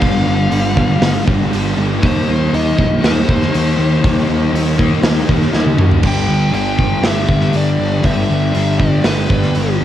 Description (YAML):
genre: rock, shoegaze and dream pop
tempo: 120 BPM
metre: 4/4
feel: straight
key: unclear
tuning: A4 = 444 Hz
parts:
  - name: nasal lead guitar with a parked wah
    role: melody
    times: 0.0-9.8 s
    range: B4 to G5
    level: -22 LUFS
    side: left 2 dB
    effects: overdrive, cassette tape, analog delay
  - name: biting overdriven guitar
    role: riff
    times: 0.0-9.8 s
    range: G2 to Eb4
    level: -24 LUFS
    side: right 1 dB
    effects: cassette tape
  - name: overdriven electric guitar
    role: riff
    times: 0.0-9.8 s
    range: G2 to G4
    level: -22 LUFS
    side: right 9 dB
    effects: reverse reverb, cassette tape
  - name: thick fuzz guitar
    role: riff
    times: 0.0-9.8 s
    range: G2 to Eb4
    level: -19 LUFS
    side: left 8 dB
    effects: distortion, lush chorus, cassette tape
  - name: fuzz picked electric bass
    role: bass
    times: 0.0-9.8 s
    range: G1 to F#2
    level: -17 LUFS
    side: equal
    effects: overdrive
  - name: big rock drum kit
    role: drums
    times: 0.0-9.7 s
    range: crash cymbal, hi-hat, kick drum, snare drum, toms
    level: -18 LUFS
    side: equal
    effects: cassette tape
room: studio ambience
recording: home recording on cassette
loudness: -12 LUFS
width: side -11 dB against mid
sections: 0.0-6.0 A section; 6.0-9.8 B section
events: drum fill 5.5-6.0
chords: 0.0 G; 2.0 Eb6; 6.0 G